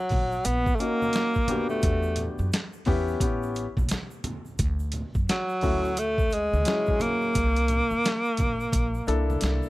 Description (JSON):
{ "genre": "hip hop, jazz-hop", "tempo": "87 BPM", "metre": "4/4", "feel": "swing 62% on 16ths", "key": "unclear", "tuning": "A4 = 440 Hz", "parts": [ { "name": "breathy alto saxophone", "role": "melody", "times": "0.0-9.4 s", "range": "F#3 to B3", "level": "-26 LUFS", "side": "equal", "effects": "none" }, { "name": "upright bass", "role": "bass", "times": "0.1-9.6 s", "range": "A1 to F#2", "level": "-28 LUFS", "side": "equal", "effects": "none" }, { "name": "boom bap sampler-style drum kit", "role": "drums", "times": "0.1-9.6 s", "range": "hi-hat, kick drum, snare drum", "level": "-28 LUFS", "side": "equal", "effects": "none" }, { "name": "congas and tube shaker", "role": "percussion", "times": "0.1-9.7 s", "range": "none", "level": "-39 LUFS", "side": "right 1 dB", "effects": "none" }, { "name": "dark concert grand piano", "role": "accompaniment", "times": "0.8-9.7 s", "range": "F#3 to A4", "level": "-30 LUFS", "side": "left 3 dB", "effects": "none" } ], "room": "small room ambience", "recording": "none", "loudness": "-23 LUFS", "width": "side -18 dB against mid", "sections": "0.0-9.7 A section", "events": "none", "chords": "0.0 Bmaj9; 1.8 Em7; 3.2 A7; 4.6 Dmaj7; 7.3 C13" }